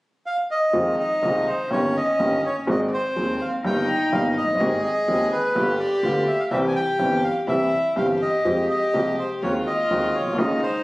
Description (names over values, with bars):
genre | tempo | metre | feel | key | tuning
tango | 124 BPM | 4/4 | rubato | F minor | A4 = 441 Hz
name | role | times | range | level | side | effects
bandoneon | melody | 0.3-10.8 s | B4 to Ab5 | -23 LUFS | equal | none
warm cello | second line | 0.7-10.8 s | C4 to Ab4 | -26 LUFS | left 1 dB | none
warm baby grand piano | accompaniment | 0.7-10.6 s | Eb1 to Ab4 | -24 LUFS | equal | none
upright bass | bass | 0.7-10.6 s | F1 to F2 | -35 LUFS | equal | none
room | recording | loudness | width
moderate studio reverb, RT60 0.6 s | recorded on a phone in the room, studio reverb, compression | -20 LUFS | side -20 dB against mid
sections
0.7-10.8 A section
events
none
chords
0.0 N.C.; 0.7 Fm7; 1.7 Eb7/G; 2.7 Ab; 3.6 Eb/G; 4.6 Abmaj7; 5.6 G7; 6.5 C; 8.4 Fmadd9; 9.4 Ab7/Eb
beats
0.26 | 0.74 1.23 1.71 2.20 | 2.68 3.17 3.65 4.13 | 4.60 5.08 5.56 6.03 | 6.51 6.99 7.47 7.96 | 8.45 8.94 9.42 9.91 | 10.39